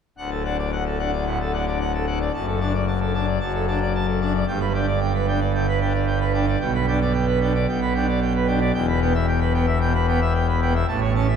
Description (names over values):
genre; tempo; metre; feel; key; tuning
classical, organ toccata; 112 BPM; 4/4; straight; D major; A4 = 440 Hz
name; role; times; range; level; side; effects
pipe organ, full organ; solo; 0.2-11.4 s; D1 to A5; -19 LUFS; equal; none
room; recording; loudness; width
wet church reverb, RT60 3.7 s; none; -20 LUFS; side -7 dB against mid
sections
0.2-11.4 A section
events
none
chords
0.2 D; 2.3 D/F#; 4.5 G; 6.6 G/B; 8.7 Em